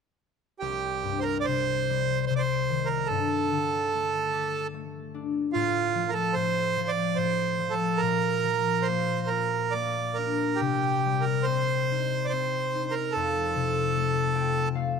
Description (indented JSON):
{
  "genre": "celtic folk, Celtic slow air",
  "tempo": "69-76 BPM",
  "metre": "3/4",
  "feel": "rubato",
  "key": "C dorian",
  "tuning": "A4 = 439 Hz",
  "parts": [
    { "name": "accordion", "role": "melody", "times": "0.6-14.7 s", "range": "F4 to D5", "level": "-26 LUFS", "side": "right 6 dB", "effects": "none" },
    { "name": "concert harp", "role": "accompaniment", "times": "0.6-15.0 s", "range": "C2 to G5", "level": "-28 LUFS", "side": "left 9 dB", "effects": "none" }
  ],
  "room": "moderate concert hall reverb, RT60 2.2 s",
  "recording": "close, detailed microphones",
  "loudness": "-24 LUFS",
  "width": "side -6 dB against mid",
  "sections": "0.6-15.0 A section",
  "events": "harp fill 13.9-15.0",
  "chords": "0.6 Cm; 3.1 Gsus2; 5.5 Bbmaj9/A (rootless); 8.0 Bb; 10.6 Cm; 13.1 F"
}